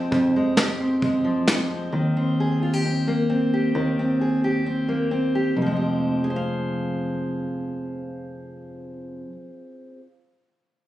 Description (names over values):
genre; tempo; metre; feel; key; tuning
indie folk with a building arrangement; 132 BPM; 4/4; straight; F minor; A4 = 440 Hz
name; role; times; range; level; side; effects
fingerpicked steel-string acoustic guitar; accompaniment; 0.0-10.1 s; F2 to F5; -24 LUFS; equal; none
picked electric bass; bass; 0.0-9.2 s; F1 to F2; -26 LUFS; right 1 dB; none
soft brush drum kit; drums; 0.1-1.6 s; kick drum, snare drum; -22 LUFS; equal; none
room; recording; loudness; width
little or no reverb; recorded on a phone in the room, studio reverb, compression; -21 LUFS; side -14 dB against mid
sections
0.0-5.6 A section; 5.6-9.2 B section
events
none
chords
0.0 Fmadd9; 1.9 Eb6; 5.6 Fmadd9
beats
| 0.12 0.57 1.03 1.48 | 1.93 2.39 2.84 3.29 | 3.75 4.20 4.65 5.11 | 5.56 6.01 6.47 6.92 | 7.38 7.83 8.28 8.74